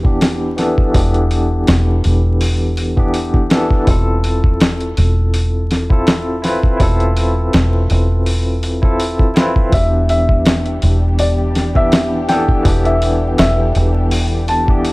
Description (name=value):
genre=trip hop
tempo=82 BPM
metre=4/4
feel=swing 55% on 16ths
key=E phrygian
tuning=A4 = 440 Hz
part: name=barky tine electric piano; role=accompaniment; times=0.0-14.9 s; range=E3 to B4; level=-19 LUFS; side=equal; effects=tremolo, low-pass filter
part: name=deep dub fingered electric bass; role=bass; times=0.0-14.9 s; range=E1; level=-16 LUFS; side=equal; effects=none
part: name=dusty soul sampler-style drum kit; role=drums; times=0.0-14.9 s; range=hi-hat, kick drum, snare drum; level=-15 LUFS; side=equal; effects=small room ambience
part: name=felt-muted upright piano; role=melody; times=9.7-14.9 s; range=D5 to A5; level=-19 LUFS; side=left 1 dB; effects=tape echo
part: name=dark studio string section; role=sustained chords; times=9.7-14.9 s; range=B3 to G4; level=-26 LUFS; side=left 1 dB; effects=none
room=digital ambience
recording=vinyl crackle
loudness=-12 LUFS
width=side -22 dB against mid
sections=0.0-14.9 A section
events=filter sweep on tine electric piano 0.0-14.9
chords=0.0 Em7; 3.9 Fmaj7#11/E; 9.7 Em7